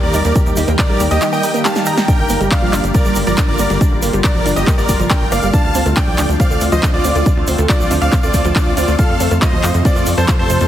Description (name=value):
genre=uplifting trance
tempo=139 BPM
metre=4/4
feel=straight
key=G minor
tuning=A4 = 440 Hz
part: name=big supersaw lead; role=melody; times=0.0-10.7 s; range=F4 to Bb5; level=-20 LUFS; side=equal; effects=sidechain pumping, digital delay
part: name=bright grand piano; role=second line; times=0.0-10.7 s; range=C5 to Bb5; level=-24 LUFS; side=equal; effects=sidechain pumping, digital delay
part: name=shimmering ambient pad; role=sustained chords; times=0.0-10.7 s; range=C3 to G4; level=-22 LUFS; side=left 1 dB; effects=chorus, built-in reverb, sidechain pumping
part: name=tight sequencer bass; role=bass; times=0.0-10.7 s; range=F1 to F2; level=-18 LUFS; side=equal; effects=sidechain pumping
part: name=analog pluck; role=arpeggios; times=0.1-10.7 s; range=F3 to Eb5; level=-22 LUFS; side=right 3 dB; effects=chorus, sidechain pumping, digital delay
part: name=punchy analog drum machine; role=drums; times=0.1-10.7 s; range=handclaps, hi-hat, snare drum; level=-22 LUFS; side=equal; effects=overdrive
part: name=tube shaker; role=percussion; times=0.1-10.7 s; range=none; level=-29 LUFS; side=right 2 dB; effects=none
part: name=electronic kick drum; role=drums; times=0.4-10.4 s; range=none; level=-15 LUFS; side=equal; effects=none
room=light reverb, digital ambience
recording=heavily compressed radio sound, multiband compression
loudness=-12 LUFS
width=side -11 dB against mid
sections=0.0-10.7 A section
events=drum fill 1.7-2.1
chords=0.0 Eb; 2.1 Gm7; 5.5 Dm7; 9.0 F